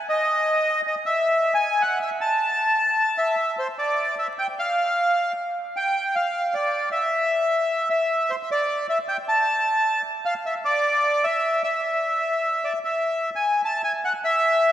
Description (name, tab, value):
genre	tango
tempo	153 BPM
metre	3/4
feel	rubato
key	unclear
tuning	A4 = 438 Hz
part	bandoneon	solo	0.1-14.7 s	C5 to A5	-20 LUFS	equal	none
room	wet cathedral reverb, RT60 4.5 s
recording	recorded in a church or concert hall, vinyl crackle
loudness	-20 LUFS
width	side -11 dB against mid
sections	0.0-3.6 A section; 3.6-13.0 B section; 13.0-14.7 A section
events	none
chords	none